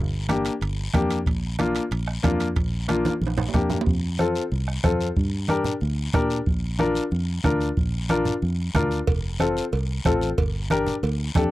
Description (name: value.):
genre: latin, cumbia.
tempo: 184 BPM.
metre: 4/4.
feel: straight.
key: unclear.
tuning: A4 = 440 Hz.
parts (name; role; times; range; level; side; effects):
fingered electric bass; bass; 0.0-11.5 s; F1 to Bb2; -26 LUFS; equal; none.
clear upright piano; accompaniment; 0.3-11.5 s; Bb3 to Bb4; -24 LUFS; left 2 dB; none.
bombo; percussion; 0.3-11.5 s; none; -25 LUFS; right 1 dB; none.
congas; percussion; 0.3-11.5 s; none; -29 LUFS; right 2 dB; none.
guiro; percussion; 0.3-11.5 s; none; -38 LUFS; left 5 dB; none.
timbales and cowbell; percussion; 0.3-3.9, 9.1-11.5 s; none; -31 LUFS; right 6 dB; none.
room: little or no reverb.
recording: dry, close 1970s-style studio recording.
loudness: -21 LUFS.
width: side -16 dB against mid.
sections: 0.0-3.9 A section; 3.9-11.5 B section.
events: drum fill 3.1-3.9.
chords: 0.0 Gm; 1.3 Bb; 3.9 F; 5.2 Gm; 6.5 Bb; 9.1 F; 10.4 Gm.